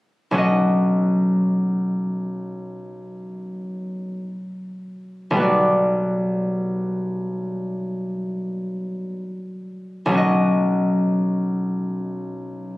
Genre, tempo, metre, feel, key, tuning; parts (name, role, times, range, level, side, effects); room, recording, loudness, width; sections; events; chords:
classical; free time; A4 = 440 Hz
concert harp; accompaniment; 0.3-12.8 s; B1 to D#5; -20 LUFS; equal
moderate recital hall reverb, RT60 1.4 s; recorded on a phone in the room, studio reverb, compression; -20 LUFS; side -19 dB against mid
0.4-12.8 A section
0.4 Badd9; 5.4 Gmaj7/B; 10.2 Badd9